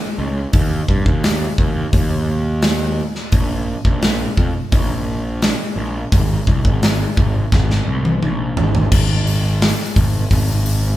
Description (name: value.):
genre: quiet-loud alternative rock.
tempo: 86 BPM.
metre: 4/4.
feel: straight.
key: unclear.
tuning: A4 = 437 Hz.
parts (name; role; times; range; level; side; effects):
fuzz picked electric bass; bass; 0.2-11.0 s; Ab1 to G2; -19 LUFS; equal; overdrive.
big rock drum kit; drums; 0.5-10.8 s; crash cymbal, hi-hat, kick drum, snare drum, toms; -17 LUFS; equal; none.
room: moderate large studio reverb, RT60 1.4 s.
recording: band playing live in one room.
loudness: -15 LUFS.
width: side -14 dB against mid.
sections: 0.0-8.9 A section; 8.9-11.0 B section.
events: drum fill 7.5-8.9.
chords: none.